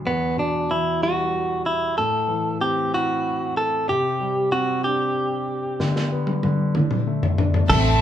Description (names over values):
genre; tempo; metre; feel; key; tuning
six-eight pop ballad; 63 BPM (dotted quarters); 6/8; straight; unclear; A4 = 440 Hz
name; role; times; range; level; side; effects
felt-muted upright piano; accompaniment; 0.0-8.0 s; E2 to E4; -25 LUFS; left 1 dB; none
direct-recorded clean electric guitar; melody; 0.1-7.8 s; B3 to A4; -22 LUFS; equal; none
modern studio drum kit; drums; 5.8-7.8 s; crash cymbal, kick drum, snare drum, toms; -21 LUFS; left 1 dB; none
clear studio string section; sustained chords; 7.7-8.0 s; C4 to A5; -20 LUFS; equal; none
vintage muted fingered electric bass; bass; 7.7-8.0 s; A1; -20 LUFS; right 1 dB; none
room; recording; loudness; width
moderate large studio reverb, RT60 0.9 s; band playing live in one room; -20 LUFS; side -10 dB against mid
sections
0.0-7.7 A section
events
drum fill 5.8-7.7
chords
0.1 Em; 2.0 Am; 3.9 Csus2; 5.8 G/D; 6.7 D5